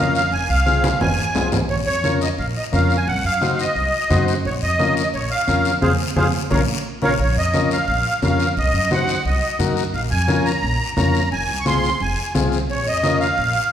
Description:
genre	latin, cumbia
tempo	175 BPM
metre	4/4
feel	straight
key	Bb minor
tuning	A4 = 443 Hz
part	musette accordion	melody	0.0-13.7 s	Ab4 to Db6	-21 LUFS	right 1 dB	none
part	overdriven combo organ	accompaniment	0.0-13.3 s	C4 to C5	-24 LUFS	left 5 dB	none
part	upright bass	bass	0.0-13.5 s	F1 to Gb2	-22 LUFS	equal	none
part	guiro	percussion	0.1-13.7 s	none	-31 LUFS	left 6 dB	none
part	congas	percussion	0.3-13.5 s	none	-24 LUFS	right 1 dB	none
room	wet recital hall reverb, RT60 1.3 s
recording	recorded in a church or concert hall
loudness	-17 LUFS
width	side -10 dB against mid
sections	0.0-7.2 A section; 7.2-13.7 A section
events	drum fill 0.7-1.7; band accent 5.8-7.2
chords	0.3 Fm; 1.7 Bbm; 3.1 Cdim; 4.4 Bbm; 5.8 Fm; 6.5 Bbm; 8.6 Cdim; 9.9 Bbm; 11.3 Fm; 12.7 Bbm

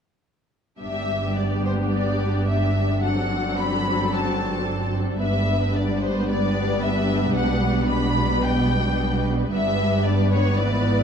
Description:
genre	classical, dramatic, fast romantic movement for symphony orchestra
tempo	110 BPM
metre	4/4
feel	rubato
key	G major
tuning	A4 = 440 Hz
part	warm symphonic violin section	melody	0.8-11.0 s	C5 to B5	-27 LUFS	left 3 dB	none
part	clear symphonic violin section	second line	0.8-11.0 s	D4 to B4	-28 LUFS	left 2 dB	none
part	warm studio viola section	accompaniment	0.8-11.0 s	E3 to C4	-26 LUFS	equal	none
part	rich symphonic cello section	bass	0.8-11.0 s	G2 to B2	-25 LUFS	right 2 dB	none
part	rich symphonic double bass section	bass	0.8-11.0 s	G1 to B1	-27 LUFS	right 2 dB	none
room	moderate recital hall reverb, RT60 1.7 s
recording	dark, warm production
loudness	-20 LUFS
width	side -7 dB against mid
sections	0.8-11.0 A section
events	none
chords	0.8 G; 3.0 D7/G; 5.2 G; 7.4 G/B; 9.5 Em7/G

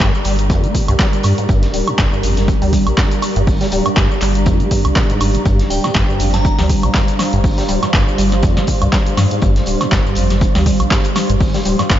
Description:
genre	acid house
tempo	121 BPM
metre	4/4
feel	swing 56% on 16ths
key	G minor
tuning	A4 = 440 Hz
part	dark analog pad	sustained chords	0.0-12.0 s	G3 to C5	-23 LUFS	right 1 dB	chorus, sidechain pumping
part	acid bass, saw	riff	0.0-12.0 s	F2 to Bb3	-20 LUFS	equal	overdrive, wide subtle chorus, vintage 12-bit sampler grit, tape echo
part	saturated sub bass	bass	0.0-12.0 s	D1 to G2	-18 LUFS	equal	tube saturation, sidechain pumping
part	crunchy breakbeat drum kit	drums	0.0-12.0 s	hi-hat, snare drum	-30 LUFS	equal	sidechain pumping on hats, high-pass filter on hats, studio reverb, high-pass filter on snare, high-pass filter on room
part	electronic kick drum	drums	0.0-12.0 s	none	-16 LUFS	equal	overdrive, studio reverb
part	punchy analog drum machine	drums	0.0-12.0 s	handclaps, hi-hat, shaker, snare drum, woodblock	-21 LUFS	equal	overdrive, studio reverb
part	granular cloud pad	texture	0.0-12.0 s	G4 to C6	-25 LUFS	right 1 dB	built-in reverb, sidechain pumping
part	glassy synth bell	melody	5.7-7.0 s	G5 to Bb5	-28 LUFS	equal	chorus, phaser, diffuse ambient delay
room	moderate cathedral reverb, RT60 4.9 s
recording	dreamy mix soaked in reverb, nothing above 7.5 kHz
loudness	-12 LUFS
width	side -12 dB against mid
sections	0.0-12.0 A section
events	filter sweep on acid bass 0.0-12.0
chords	0.0 Gm

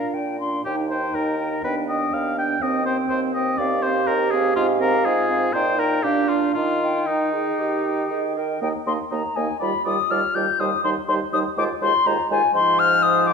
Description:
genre	quick classical-period movement for wind quintet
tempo	122 BPM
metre	4/4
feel	straight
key	Eb major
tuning	A4 = 438 Hz
part	concert flute	melody	0.0-13.3 s	F5 to G6	-23 LUFS	left 5 dB	none
part	warm oboe	second line	0.0-13.3 s	Eb4 to G5	-25 LUFS	left 1 dB	none
part	warm French horn	accompaniment	0.0-13.3 s	F3 to Eb4	-29 LUFS	right 2 dB	none
part	warm clarinet	accompaniment	0.0-13.3 s	B3 to Bb4	-27 LUFS	right 7 dB	none
part	mellow bassoon	bass	0.1-13.3 s	Eb2 to Eb3	-27 LUFS	right 3 dB	none
room	moderate scoring stage reverb, RT60 1.6 s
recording	minimal, uncompressed stereo recording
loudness	-19 LUFS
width	side -6 dB against mid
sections	0.0-8.6 A section; 8.6-13.3 B section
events	none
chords	0.0 Bb; 0.7 Eb; 1.6 G/Eb; 2.6 Cm/Eb; 3.6 F5/Eb; 4.6 Fm/Ab; 5.5 Eb/Bb; 6.0 Bb; 6.6 Eb; 8.6 Eb5; 9.6 G5/Eb; 10.6 Cm/Eb; 11.6 Fm/Eb; 12.5 Fm/Ab

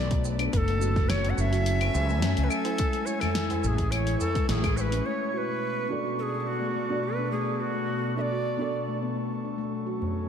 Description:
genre	organic downtempo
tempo	106 BPM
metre	4/4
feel	straight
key	B dorian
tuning	A4 = 440 Hz
part	breathy bright Native American-style cedar flute	melody	0.0-9.0 s	F#4 to F#5	-31 LUFS	equal	tape echo
part	airy breathy pad	sustained chords	0.0-10.3 s	B2 to C#6	-32 LUFS	right 1 dB	chorus, sidechain pumping
part	steel tongue drum	arpeggios	0.0-10.1 s	G#3 to F#4	-33 LUFS	left 2 dB	low-pass filter, tape echo
part	fretless electric bass	bass	0.0-5.0 s	F#1 to F#2	-26 LUFS	equal	ensemble chorus
part	deep house drum kit	drums	0.1-5.0 s	claves, hi-hat, shaker, snare drum	-33 LUFS	left 1 dB	none
part	electronic kick drum	drums	0.1-4.7 s	none	-28 LUFS	equal	none
part	tabla	percussion	0.3-5.0, 10.0-10.1 s	none	-36 LUFS	right 1 dB	none
part	felt-muted upright piano	accompaniment	5.9-9.6 s	B3 to D5	-36 LUFS	right 3 dB	sidechain pumping, low-pass filter, tape echo
room	moderate echo chamber reverb, RT60 2.1 s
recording	dark, warm production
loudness	-25 LUFS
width	side -8 dB against mid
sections	0.0-5.1 A section; 5.1-10.3 B section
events	band accent 4.5; filter sweep on steel tongue drum 5.1-10.3; filter sweep on felt piano 5.1-10.3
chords	0.0 Bm7; 0.5 F#m7; 2.8 Amaj7; 5.1 Bm7; 9.6 F#m7

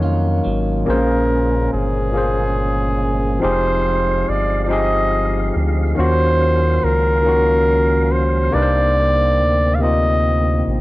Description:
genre	slow six-eight R&B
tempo	47 BPM (dotted quarters)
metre	6/8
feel	straight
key	unclear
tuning	A4 = 442 Hz
part	electric guitar at the edge of break-up	second line	0.0-1.5 s	Eb3 to F4	-27 LUFS	right 5 dB	none
part	overdriven tine electric piano	accompaniment	0.0-10.8 s	Bb2 to Eb5	-20 LUFS	left 2 dB	none
part	round analog bass	bass	0.0-10.8 s	F1 to F2	-19 LUFS	equal	transformer saturation
part	breathy flugelhorn	melody	0.9-10.8 s	Ab4 to F5	-19 LUFS	right 1 dB	none
part	percussive tonewheel organ	sustained chords	0.9-10.8 s	Db3 to F5	-28 LUFS	right 1 dB	overdrive, chorus vibrato, fast rotary speaker
room	light reverb, digital ambience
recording	worn, warbling old tape, cassette tape, warbly pitch drift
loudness	-14 LUFS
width	side -18 dB against mid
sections	0.9-10.8 A section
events	none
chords	0.0 Ebm9; 0.9 Bbm9; 3.4 Fm9; 6.0 Ebm9; 8.5 Cm9

